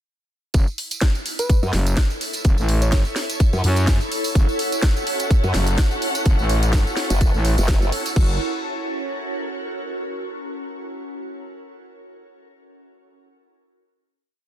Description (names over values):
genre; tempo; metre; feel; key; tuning
bass house; 126 BPM; 4/4; swing 56% on 16ths; F# minor; A4 = 440 Hz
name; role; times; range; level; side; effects
growling FM bass; bass; 0.5-8.4 s; F#1 to F#2; -19 LUFS; equal; overdrive, sidechain pumping
electronic kick drum; drums; 0.5-8.3 s; none; -17 LUFS; equal; none
garage drum kit; drums; 0.5-8.3 s; crash cymbal, hi-hat, snare drum; -27 LUFS; equal; none
tambourine; percussion; 0.5-8.1 s; none; -33 LUFS; right 4 dB; none
ethereal airy pad; texture; 1.3-10.0 s; C#4 to C#5; -28 LUFS; right 1 dB; ensemble chorus, built-in reverb, phaser, sidechain pumping
soft struck synth lead; melody; 1.4-3.0 s; B4 to C#5; -30 LUFS; equal; chorus, ping-pong delay
formant-sweep wobble bass; bass; 1.6-7.9 s; F#1 to F#2; -21 LUFS; equal; chorus, sidechain pumping
dark chamber string section; sustained chords; 4.4-8.4 s; C#4 to F#5; -29 LUFS; left 2 dB; sidechain pumping
room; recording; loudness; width
digital ambience; dense, heavily limited modern master; -18 LUFS; side -12 dB against mid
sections
0.5-8.2 drop; 8.2-10.1 final chord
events
drop 0.5-8.2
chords
0.5 F#m; 8.2 F#